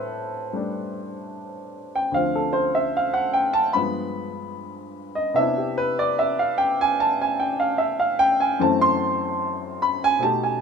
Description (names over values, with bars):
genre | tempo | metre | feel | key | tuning
solo jazz | 74 BPM | 4/4 | swing 68% on 8ths | C major | A4 = 440 Hz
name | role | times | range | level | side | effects
warm baby grand piano | solo | 0.0-10.6 s | D2 to C6 | -21 LUFS | equal | none
room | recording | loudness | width
light reverb | minimal, uncompressed stereo recording | -20 LUFS | side -6 dB against mid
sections
0.0-10.6 A section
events
grand piano solo 0.0-10.6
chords
0.0 Am7; 2.1 Dm7; 3.7 G7b9; 5.4 Cmaj9; 8.6 F#m7b5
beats
0.52 1.33 | 2.13 2.94 3.75 4.55 | 5.36 6.17 6.98 7.78 | 8.59 9.40 10.21